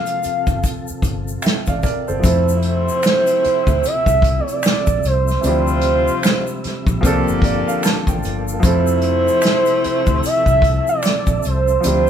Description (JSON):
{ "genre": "R&B, neo-soul", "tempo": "75 BPM", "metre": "4/4", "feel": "swing 60% on 16ths", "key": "F major", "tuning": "A4 = 439 Hz", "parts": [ { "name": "gliding portamento lead", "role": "melody", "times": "0.0-12.1 s", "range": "C5 to F5", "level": "-18 LUFS", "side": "right 2 dB", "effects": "chorus" }, { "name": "warm grand piano", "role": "accompaniment", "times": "0.0-12.1 s", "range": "E3 to A5", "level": "-23 LUFS", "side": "equal", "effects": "none" }, { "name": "tonewheel organ", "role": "sustained chords", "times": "0.0-12.1 s", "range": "C3 to E5", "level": "-28 LUFS", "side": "right 1 dB", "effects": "slow rotary speaker, chorus vibrato" }, { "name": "unplugged drum kit", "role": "drums", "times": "0.1-12.1 s", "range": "hi-hat, kick drum, snare drum", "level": "-19 LUFS", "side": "equal", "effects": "none" }, { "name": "tube shaker and finger snaps", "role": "percussion", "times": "0.1-12.1 s", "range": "none", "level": "-31 LUFS", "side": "left 1 dB", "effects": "none" }, { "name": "vintage muted fingered electric bass", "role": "bass", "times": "0.3-12.1 s", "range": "G1 to F2", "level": "-21 LUFS", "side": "left 1 dB", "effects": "none" }, { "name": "clear saxophone section", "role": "stabs", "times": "2.2-12.1 s", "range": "C3 to G4", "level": "-25 LUFS", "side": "left 5 dB", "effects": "none" } ], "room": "light reverb", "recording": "band playing live in one room", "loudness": "-15 LUFS", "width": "side -9 dB against mid", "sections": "0.0-2.2 A section; 2.2-12.1 B section", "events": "grand piano fill 7.0-8.6", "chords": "0.0 Gm11; 2.2 Fmaj7; 5.4 Dm11; 7.0 C13sus4; 8.6 Fmaj7", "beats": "0.63 1.43 | 2.23 3.03 3.83 4.63 | 5.43 6.23 7.03 7.83 | 8.63 9.43 10.23 11.03 | 11.83" }